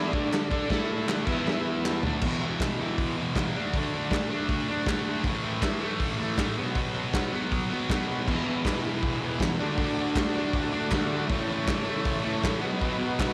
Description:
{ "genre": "garage rock duo or trio", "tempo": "158 BPM", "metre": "4/4", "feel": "straight", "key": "E mixolydian", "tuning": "A4 = 442 Hz", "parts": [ { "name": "combo organ", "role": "sustained chords", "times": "0.0-2.2, 8.2-13.3 s", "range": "C#3 to A5", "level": "-37 LUFS", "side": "equal", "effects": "none" }, { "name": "thick fuzz guitar", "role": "riff", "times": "0.0-13.3 s", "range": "E2 to D5", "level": "-30 LUFS", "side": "equal", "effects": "distortion" }, { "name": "raw garage drum kit", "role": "drums", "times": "0.1-13.3 s", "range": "crash cymbal, hi-hat, kick drum, snare drum, toms", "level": "-32 LUFS", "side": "equal", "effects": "none" }, { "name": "group handclap", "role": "percussion", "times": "0.3-13.3 s", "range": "none", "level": "-42 LUFS", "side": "equal", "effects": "none" } ], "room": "moderate echo chamber reverb, RT60 1.9 s, small room ambience", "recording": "none", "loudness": "-28 LUFS", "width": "mono", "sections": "0.0-2.2 A section; 2.2-13.3 B section", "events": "transistor combo organ fill 1.7-2.2; drum fill 1.8-2.2", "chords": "0.0 D5; 0.7 A5; 1.1 D5; 1.3 E5; 2.0 D5; 2.2 E5; 3.6 D5; 5.3 A5; 6.6 B5; 8.3 E; 9.6 D; 11.3 A; 12.6 B" }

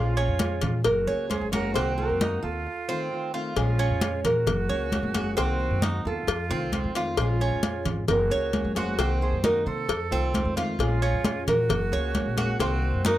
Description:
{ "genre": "latin, Cuban son and guajira", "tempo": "133 BPM", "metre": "4/4", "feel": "straight", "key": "Bb minor", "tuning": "A4 = 440 Hz", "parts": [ { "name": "nylon-string guitar", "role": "melody", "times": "0.0-13.2 s", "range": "Ab4 to Db5", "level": "-30 LUFS", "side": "right 1 dB", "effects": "none" }, { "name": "silver concert flute", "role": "second line", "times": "0.0-13.2 s", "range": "F4 to Bb4", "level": "-35 LUFS", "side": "right 5 dB", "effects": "none" }, { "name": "fingerpicked plugged-in steel-string acoustic guitar", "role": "accompaniment", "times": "0.0-13.2 s", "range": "C3 to Ab4", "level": "-34 LUFS", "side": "left 4 dB", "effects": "none" }, { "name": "Cuban tres", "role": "arpeggios", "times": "0.0-13.2 s", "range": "C4 to Db5", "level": "-30 LUFS", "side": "right 4 dB", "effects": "none" }, { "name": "upright bass", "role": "bass", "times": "0.0-13.2 s", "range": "Gb1 to C3", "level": "-28 LUFS", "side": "equal", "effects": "none" }, { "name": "congas", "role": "percussion", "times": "0.2-13.2 s", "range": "none", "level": "-30 LUFS", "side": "equal", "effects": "none" }, { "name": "cowbell", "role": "percussion", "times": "0.4-13.2 s", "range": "none", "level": "-31 LUFS", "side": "left 7 dB", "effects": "none" } ], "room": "light reverb", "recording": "none", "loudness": "-23 LUFS", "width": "side -13 dB against mid", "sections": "0.0-3.6 A section; 3.6-13.2 A section", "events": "break 2.7-3.6", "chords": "0.0 Bbm7; 0.8 Gbadd9; 1.8 Cm7b5; 2.7 F7; 3.6 Bbm7; 4.5 Gbadd9; 5.4 Cm7b5; 6.3 F7; 7.2 Bbm7; 8.1 Gbadd9; 9.0 Cm7b5; 9.9 F7; 10.8 Bbm7; 11.7 Gbadd9; 12.6 Cm7b5" }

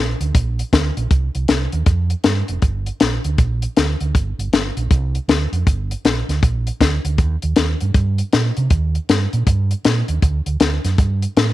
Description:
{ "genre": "electric blues shuffle", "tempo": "158 BPM", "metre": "4/4", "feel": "swing 63% on 8ths", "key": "G minor", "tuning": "A4 = 442 Hz", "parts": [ { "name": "fingered electric bass", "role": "bass", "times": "0.0-11.5 s", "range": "F1 to C3", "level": "-19 LUFS", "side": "right 2 dB", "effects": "none" }, { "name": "compact cocktail drum kit", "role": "drums", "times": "0.2-11.5 s", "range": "hi-hat, kick drum, snare drum", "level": "-17 LUFS", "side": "left 2 dB", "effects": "none" } ], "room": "light reverb", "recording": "1960s-style stereo", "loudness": "-16 LUFS", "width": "side -15 dB against mid", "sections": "0.0-11.5 A section", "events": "none", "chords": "none" }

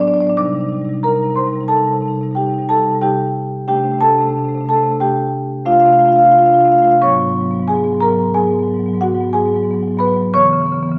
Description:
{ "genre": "classical, contemporary piece for solo marimba", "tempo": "90 BPM", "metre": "5/4", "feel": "straight", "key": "unclear", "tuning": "A4 = 440 Hz", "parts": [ { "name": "marimba with medium mallets", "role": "solo", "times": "0.0-11.0 s", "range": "G#2 to D6", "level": "-15 LUFS", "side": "equal", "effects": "none" } ], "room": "wet scoring stage reverb, RT60 1.6 s", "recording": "none", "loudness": "-15 LUFS", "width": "mono", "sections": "0.0-11.0 A section", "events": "none", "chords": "0.4 Cmadd9; 3.7 F69/C; 7.0 G#m11; 10.3 C#m7" }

